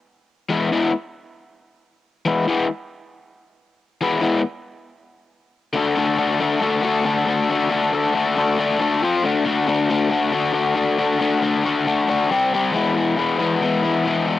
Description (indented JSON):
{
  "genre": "rock",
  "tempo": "137 BPM",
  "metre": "4/4",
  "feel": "straight",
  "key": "E mixolydian",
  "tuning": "A4 = 440 Hz",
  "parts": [
    { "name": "crunchy overdriven guitar", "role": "solo", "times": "0.5-14.4 s", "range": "C3 to C5", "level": "-17 LUFS", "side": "left 3 dB", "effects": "cassette tape" }
  ],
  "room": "light reverb",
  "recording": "home recording on cassette",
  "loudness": "-18 LUFS",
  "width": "side -13 dB against mid",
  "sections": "0.0-5.8 A section; 5.8-12.7 B section; 12.7-14.4 C section",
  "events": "none",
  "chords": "0.0 E; 5.8 D; 9.0 F5; 9.2 D; 12.3 C5; 12.7 E",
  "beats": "0.07 | 0.51 0.94 1.38 1.82 | 2.26 2.69 3.13 3.57 | 4.01 4.44 4.88 5.32 | 5.75 6.19 6.62 7.06 | 7.50 7.93 8.37 8.80 | 9.24 9.68 10.11 10.55 | 10.98 11.42 11.86 12.29 | 12.73 13.17 13.61 14.04"
}